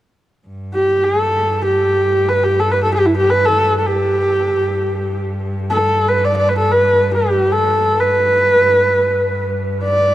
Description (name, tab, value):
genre	mongolian traditional, Mongolian folk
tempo	free time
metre	none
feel	none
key	G gong mode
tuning	A4 = 437 Hz
part	bright cello	drone	0.5-10.1 s	G2	-22 LUFS	equal	none
part	rich horsehead fiddle	melody	0.7-10.1 s	E4 to D5	-14 LUFS	equal	none
room	moderate huge ambient reverb, RT60 5.4 s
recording	dark, warm production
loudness	-13 LUFS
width	side -14 dB against mid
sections	0.5-10.1 A section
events	none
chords	none